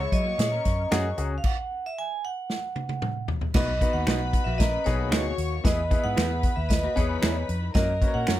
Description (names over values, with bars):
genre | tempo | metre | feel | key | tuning
uptempo 1960s-style soul | 114 BPM | 4/4 | straight | unclear | A4 = 440 Hz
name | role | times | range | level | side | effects
vibraphone with hard mallets | melody | 0.0-8.4 s | C#5 to G#5 | -30 LUFS | right 2 dB | none
dark chamber string section | second line | 0.0-8.4 s | A#4 to C#6 | -36 LUFS | left 3 dB | none
electric guitar through a small old amp | riff | 0.0-1.3, 4.5-7.7 s | G#3 to B4 | -36 LUFS | left 10 dB | ensemble chorus
vintage muted fingered electric bass | bass | 0.0-8.4 s | A#1 to F#3 | -29 LUFS | equal | none
natural country drum kit | drums | 0.1-8.4 s | crash cymbal, hi-hat, kick drum, snare drum, toms | -26 LUFS | equal | none
clear concert grand piano | accompaniment | 0.9-8.4 s | B2 to C#5 | -32 LUFS | left 4 dB | none
electric guitar through a small old amp | stabs | 0.9-8.4 s | C#4 to F#5 | -34 LUFS | right 9 dB | tremolo, tape echo
finger snaps | percussion | 0.9-8.4 s | none | -32 LUFS | left 4 dB | none
room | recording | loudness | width
little or no reverb | none | -23 LUFS | side -13 dB against mid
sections
0.0-3.5 A section; 3.5-8.4 B section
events
stop 1.4-3.5; drum fill 2.5-3.5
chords
0.0 F#; 1.4 N.C.; 3.5 B; 5.6 E; 7.8 F#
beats
0.39 0.92 | 1.44 1.97 2.49 3.02 | 3.55 4.07 4.60 5.12 | 5.65 6.17 6.70 7.22 | 7.75 8.28